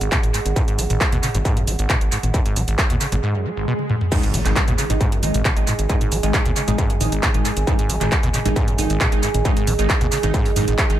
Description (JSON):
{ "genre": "driving peak-time techno", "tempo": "135 BPM", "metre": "4/4", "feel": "straight", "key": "unclear", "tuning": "A4 = 440 Hz", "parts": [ { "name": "acid bass, saw", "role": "riff", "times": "0.0-10.8 s", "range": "G#1 to G#3", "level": "-25 LUFS", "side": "equal", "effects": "sidechain pumping, tape echo" }, { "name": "gritty driven synth bass", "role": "bass", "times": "0.0-11.0 s", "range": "G#1 to G#2", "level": "-22 LUFS", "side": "equal", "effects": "sidechain pumping" }, { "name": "techno drum kit", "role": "drums", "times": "0.0-11.0 s", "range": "crash cymbal, handclaps, hi-hat, shaker, toms", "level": "-23 LUFS", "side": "equal", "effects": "overdrive, sidechain pumping on hats, sidechain pumping on perc, sidechain pumping on toms, sidechain pumping on cymbals, tape echo" }, { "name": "warbly tape-like pad", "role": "texture", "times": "0.0-11.0 s", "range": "G#4 to G#5", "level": "-28 LUFS", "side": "right 7 dB", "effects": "chorus, built-in reverb, sidechain pumping" }, { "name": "electronic kick drum", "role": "drums", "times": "0.1-10.9 s", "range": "none", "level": "-20 LUFS", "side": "equal", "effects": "distortion, overdrive" }, { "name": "swell and impact", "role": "sound effects", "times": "3.4-5.9 s", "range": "none", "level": "-29 LUFS", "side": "equal", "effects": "none" }, { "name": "rave stab", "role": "stabs", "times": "4.1-11.0 s", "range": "D#3 to D#4", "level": "-26 LUFS", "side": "equal", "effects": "chorus, built-in reverb, sidechain pumping, tape echo" } ], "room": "little or no reverb", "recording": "echo-heavy mix", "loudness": "-17 LUFS", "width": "side -12 dB against mid", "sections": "0.0-4.1 A section; 4.1-11.0 B section", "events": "break 3.2-4.1; swell 3.4-4.1; drum fill 3.8-4.1; drop 4.1-11.0; impact 4.1-5.9", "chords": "0.0 G#5" }